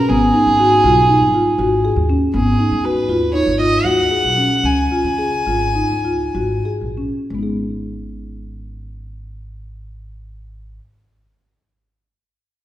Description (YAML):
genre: contemporary instrumental, chamber music in an uneven meter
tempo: 180-240 BPM (eighths)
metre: 9/8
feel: straight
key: G# dorian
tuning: A4 = 440 Hz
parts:
  - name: warm violin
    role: melody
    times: 0.0-6.7 s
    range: G#4 to G#5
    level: -17 LUFS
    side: right 1 dB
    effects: none
  - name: marimba with soft mallets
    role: arpeggios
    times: 0.1-10.9 s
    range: G#3 to G#4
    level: -18 LUFS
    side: left 1 dB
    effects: none
  - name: upright bass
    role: bass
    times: 0.1-10.8 s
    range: G#1 to C#3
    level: -22 LUFS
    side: equal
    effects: none
room: wet recital hall reverb, RT60 1.6 s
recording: recorded in a church or concert hall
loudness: -14 LUFS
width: side -13 dB against mid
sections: 0.0-2.3 A section; 2.3-7.3 B section; 7.3-10.3 C section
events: slowing down 2.8-7.3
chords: 0.0 G#m7; 4.6 C#; 7.3 G#m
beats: | 0.09 0.34 0.59 0.84 1.09 1.34 1.59 1.84 2.09 | 2.34 2.59 2.84 3.09 3.34 3.59 3.85 4.11 4.37 | 4.64 4.91 5.18 5.47 5.75 6.05 6.35 6.66 6.97 | 7.30 7.64 7.97 8.30 8.64 8.97 9.30 9.63 9.97